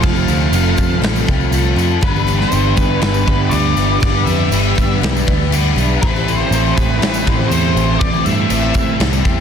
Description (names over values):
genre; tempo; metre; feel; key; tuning
rock, shoegaze and dream pop; 120 BPM; 4/4; straight; G mixolydian; A4 = 445 Hz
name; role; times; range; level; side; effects
octave-fuzz lead guitar; melody; 0.0-9.0 s; B4 to F5; -23 LUFS; left 3 dB; distortion, analog delay
string machine, violins; sustained chords; 0.0-9.4 s; C4 to B5; -26 LUFS; equal; ensemble chorus
picked twelve-string acoustic guitar; arpeggios; 0.0-9.4 s; E3 to G4; -27 LUFS; right 1 dB; analog chorus, analog delay
crunchy overdriven guitar; riff; 0.0-9.4 s; F2 to E4; -21 LUFS; right 10 dB; reverse reverb
overdriven electric guitar; riff; 0.0-9.4 s; A2 to C5; -22 LUFS; left 11 dB; lush chorus
vintage muted picked electric bass; bass; 0.0-9.4 s; F1 to A2; -18 LUFS; equal; none
big rock drum kit; drums; 0.0-9.4 s; crash cymbal, kick drum, snare drum; -18 LUFS; left 1 dB; none
tambourine; percussion; 0.0-9.3 s; none; -32 LUFS; right 10 dB; none
room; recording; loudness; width
light reverb, small room ambience; dense, heavily limited modern master; -12 LUFS; side -8 dB against mid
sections
0.0-9.4 A section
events
none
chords
0.0 F; 2.0 G6; 6.0 Am7